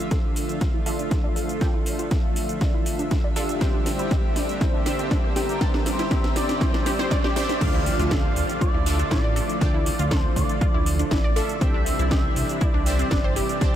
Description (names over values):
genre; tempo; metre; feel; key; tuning
progressive house; 120 BPM; 4/4; straight; D minor; A4 = 440 Hz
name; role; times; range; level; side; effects
expressive synth lead; melody; 0.0-13.8 s; G4 to F5; -31 LUFS; equal; wide subtle chorus, tape echo
lush unison pad; sustained chords; 0.0-13.8 s; C3 to E5; -30 LUFS; equal; chorus, sidechain pumping
wide unison pluck; arpeggios; 0.0-13.6 s; C4 to D5; -32 LUFS; equal; cassette tape, sidechain pumping, tape echo
supersaw stab; stabs; 0.0-13.7 s; D4 to A5; -32 LUFS; right 2 dB; sidechain pumping, low-pass filter, tape echo
house drum kit; drums; 0.0-13.7 s; crash cymbal, hi-hat, shaker, snare drum; -31 LUFS; equal; overdrive, sidechain pumping on perc, sidechain pumping on hats, sidechain pumping on cymbals
riser and impact; sound effects; 3.3-9.6 s; none; -36 LUFS; equal; none
electronic kick drum; drums; 0.1-13.7 s; none; -23 LUFS; equal; overdrive
fat analog bass; bass; 7.6-13.8 s; G1 to D2; -26 LUFS; equal; sidechain pumping
room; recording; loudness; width
moderate huge ambient reverb, RT60 8.9 s; dreamy mix soaked in reverb; -20 LUFS; side -11 dB against mid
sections
0.0-7.6 A section; 7.6-13.8 B section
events
build-up 0.0-7.6; drum fill 0.0-7.6; filter sweep on synth pluck 0.0-7.6; filter sweep on supersaw synth 0.0-7.6; filter sweep on analog synth lead 0.0-7.6; drop 7.6-13.8; impact 7.6-9.6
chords
0.0 Dmadd9; 3.6 Cadd9; 7.6 Dmadd9; 11.6 Cadd9